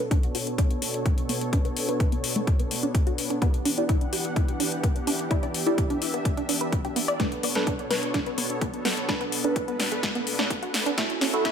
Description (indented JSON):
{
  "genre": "progressive house",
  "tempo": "127 BPM",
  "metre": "4/4",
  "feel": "straight",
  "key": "B minor",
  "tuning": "A4 = 437 Hz",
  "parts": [
    { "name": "supersaw pad", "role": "sustained chords", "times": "0.0-11.5 s", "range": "B2 to F#5", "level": "-31 LUFS", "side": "equal", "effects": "sidechain pumping, low-pass filter" },
    { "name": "deep mellow chord stab", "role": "stabs", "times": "0.0-11.5 s", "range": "D4 to D5", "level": "-31 LUFS", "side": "right 2 dB", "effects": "chorus, sidechain pumping, ping-pong delay" },
    { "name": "big-room dance drum kit", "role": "drums", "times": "0.0-11.5 s", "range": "hi-hat, snare drum", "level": "-29 LUFS", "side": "left 2 dB", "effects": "none" },
    { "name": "tight sequenced synth", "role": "arpeggios", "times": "0.1-11.5 s", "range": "A3 to D5", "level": "-30 LUFS", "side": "equal", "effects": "chorus, vintage 12-bit sampler grit, sidechain pumping, ping-pong delay" },
    { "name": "electronic kick drum", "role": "drums", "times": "0.1-11.5 s", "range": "none", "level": "-25 LUFS", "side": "equal", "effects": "none" },
    { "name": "riser", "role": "sound effects", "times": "8.8-11.5 s", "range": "none", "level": "-41 LUFS", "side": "equal", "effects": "none" }
  ],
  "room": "light reverb",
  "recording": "high-pass filter",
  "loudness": "-23 LUFS",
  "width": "side -8 dB against mid",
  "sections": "0.0-11.5 A section",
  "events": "build-up 0.0-11.5; filter sweep on synth arpeggio sound 0.0-11.5; filter sweep on synth stab 0.0-11.5; filter sweep on supersaw synth 0.0-11.5; filter sweep 0.0-11.5; drum fill 7.2-11.5",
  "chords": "0.0 Bm7; 3.4 Em7; 7.2 Bm7; 11.0 F#m7",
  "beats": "0.11 0.58 1.06 | 1.53 2.00 2.47 2.95 | 3.42 3.89 4.36 4.84 | 5.31 5.78 6.25 6.73 | 7.20 7.67 8.14 8.62 | 9.09 9.56 10.03 10.51 | 10.98 11.45"
}